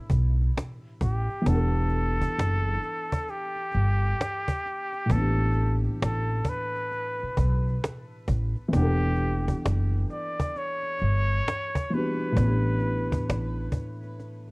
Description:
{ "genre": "lo-fi hip hop", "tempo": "66 BPM", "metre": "4/4", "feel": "swing 65% on 16ths", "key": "E dorian", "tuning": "A4 = 441 Hz", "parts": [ { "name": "trumpet with straight mute", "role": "melody", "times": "0.0-13.7 s", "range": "E4 to D5", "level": "-31 LUFS", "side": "equal", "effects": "low-pass filter, tape echo" }, { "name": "felt-muted upright piano", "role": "accompaniment", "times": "0.0-14.5 s", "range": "A2 to F#5", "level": "-30 LUFS", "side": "equal", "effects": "cassette tape, low-pass filter" }, { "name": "upright bass", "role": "bass", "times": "0.1-13.7 s", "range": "E1 to B1", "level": "-25 LUFS", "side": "equal", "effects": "none" }, { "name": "cajon", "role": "drums", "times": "0.1-14.5 s", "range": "none", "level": "-30 LUFS", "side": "equal", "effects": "none" } ], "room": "light reverb", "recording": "worn, warbling old tape, cassette tape, warbly pitch drift", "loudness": "-24 LUFS", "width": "side -30 dB against mid", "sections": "0.0-14.5 A section", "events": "none", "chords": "0.0 A9sus4; 1.5 Em11; 5.1 A9sus4; 8.7 Em11; 12.4 A9sus4" }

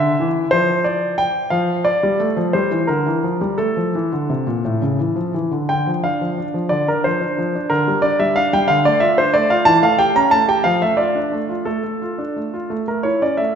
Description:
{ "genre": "classical-period piano sonatina", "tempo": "56-62 BPM (dotted quarters)", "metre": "6/8", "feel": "rubato", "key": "D minor", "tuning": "A4 = 441 Hz", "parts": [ { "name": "warm concert grand piano", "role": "solo", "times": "0.0-13.6 s", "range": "A2 to Bb5", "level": "-16 LUFS", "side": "equal", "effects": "none" } ], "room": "wet concert hall reverb, RT60 2.1 s", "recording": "recorded in a church or concert hall, nothing above 7.9 kHz", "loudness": "-16 LUFS", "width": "side -7 dB against mid", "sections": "0.0-5.7 A section; 5.7-13.6 B section", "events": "none", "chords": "0.0 N.C.; 1.5 Dm/F; 2.5 Gm; 3.6 Dm; 4.6 A; 5.7 Dm; 7.7 G5/D; 8.7 Dm; 9.7 A7/E; 10.7 Dm/F; 11.7 Dm/A; 12.7 A" }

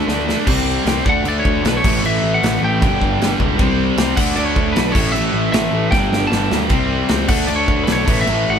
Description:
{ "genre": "punk rock", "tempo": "154 BPM", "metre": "4/4", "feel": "straight", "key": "unclear", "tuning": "A4 = 439 Hz", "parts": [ { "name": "lightly driven lead guitar", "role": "melody", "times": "0.0-8.6 s", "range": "A4 to A5", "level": "-21 LUFS", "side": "equal", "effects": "none" }, { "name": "cranked stack guitar", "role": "riff", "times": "0.0-8.6 s", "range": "G2 to D4", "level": "-22 LUFS", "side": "right 5 dB", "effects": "overdrive" }, { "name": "crunchy overdriven guitar", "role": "riff", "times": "0.0-8.6 s", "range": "G2 to D4", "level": "-23 LUFS", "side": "left 6 dB", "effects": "none" }, { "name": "scooped high-gain guitar", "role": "riff", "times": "0.0-8.6 s", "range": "G2 to D4", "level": "-24 LUFS", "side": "equal", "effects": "distortion" }, { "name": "fuzz picked electric bass", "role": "bass", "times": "0.1-8.6 s", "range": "G1 to D2", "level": "-22 LUFS", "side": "equal", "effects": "overdrive" }, { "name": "big rock drum kit", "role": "drums", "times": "0.1-8.4 s", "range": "crash cymbal, kick drum, snare drum", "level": "-19 LUFS", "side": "equal", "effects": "none" } ], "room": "light reverb", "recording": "band playing live in one room", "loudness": "-14 LUFS", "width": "side -7 dB against mid", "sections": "0.5-8.6 A section", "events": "drum fill 0.0-0.5, 5.9-6.7", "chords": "0.5 C5; 1.1 D5; 1.8 A5; 2.8 G5; 3.6 C5; 4.2 D5; 4.9 A5; 5.9 G5; 6.7 C5; 7.3 D5; 8.1 A5" }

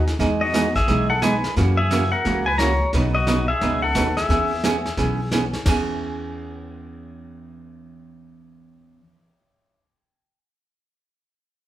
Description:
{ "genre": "country, western swing", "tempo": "176 BPM", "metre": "4/4", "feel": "swing 64% on 8ths", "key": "E major", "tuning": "A4 = 444 Hz", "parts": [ { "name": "pedal steel guitar", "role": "melody", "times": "0.0-5.3 s", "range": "F#4 to A#5", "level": "-22 LUFS", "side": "left 2 dB", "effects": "none" }, { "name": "upright bass", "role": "bass", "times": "0.0-9.0 s", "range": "B1 to F#2", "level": "-24 LUFS", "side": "equal", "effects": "none" }, { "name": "vintage brush drum kit", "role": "drums", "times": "0.1-5.9 s", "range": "brushed snare drum, crash cymbal, hi-hat, kick drum, snare drum", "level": "-29 LUFS", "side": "equal", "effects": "none" }, { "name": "archtop guitar, miked and amplified", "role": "accompaniment", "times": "0.2-9.2 s", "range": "B2 to B4", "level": "-24 LUFS", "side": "right 3 dB", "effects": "none" } ], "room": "wet large studio reverb, RT60 0.8 s", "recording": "band playing live in one room", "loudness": "-18 LUFS", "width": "side -13 dB against mid", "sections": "0.0-5.7 A section; 5.7-8.4 B section", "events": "none", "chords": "0.2 Emaj7; 1.6 F#7; 2.9 Badd9; 4.3 E6" }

